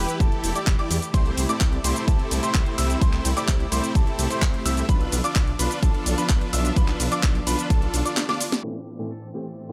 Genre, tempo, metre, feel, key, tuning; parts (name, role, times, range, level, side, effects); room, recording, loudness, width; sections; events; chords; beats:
EDM, festival progressive house; 128 BPM; 4/4; straight; A4 = 440 Hz
bright studio string section; sustained chords; 0.0-9.7 s; A2 to G4; -36 LUFS; equal; sidechain pumping, low-pass filter
clear concert grand piano; arpeggios; 0.0-8.5 s; A5 to E6; -34 LUFS; equal; sidechain pumping, tape echo
dense compressed supersaw; riff; 0.0-8.5 s; A3 to E5; -31 LUFS; equal; cassette tape, sidechain pumping, tape echo
detuned saw bass; bass; 0.0-8.0 s; E1 to E2; -29 LUFS; equal; chorus, sidechain pumping
house drum kit; drums; 0.1-8.7 s; crash cymbal, handclaps, hi-hat, ride cymbal, shaker, snare drum; -31 LUFS; equal; low-pass filter on hats, low-pass filter on perc, low-pass filter on snare, low-pass filter on cymbals, low-pass filter on room
electronic kick drum; drums; 0.2-7.8 s; -23 LUFS; equal
felt-muted upright piano; accompaniment; 8.6-9.7 s; A2 to G4; -35 LUFS; equal; vintage 12-bit sampler grit, sidechain pumping
trumpet with metal mute; melody; 9.1-9.3 s; A4; -58 LUFS; equal; tape echo
small room ambience; low-pass filter; -23 LUFS; mono
0.0-8.6 A section; 8.6-9.7 B section
drop 0.0-8.6; drum fill 8.2-8.6; band accent 8.5; filter sweep on string section 8.6-9.7; filter sweep 8.6-9.7
0.0 Em; 1.1 C6; 4.9 Bdim; 8.6 Am
0.20 0.67 | 1.14 1.61 2.08 2.55 | 3.02 3.48 3.95 4.42 | 4.89 5.36 5.83 6.30 | 6.76 7.23 7.70 8.17 | 8.64 9.11 9.58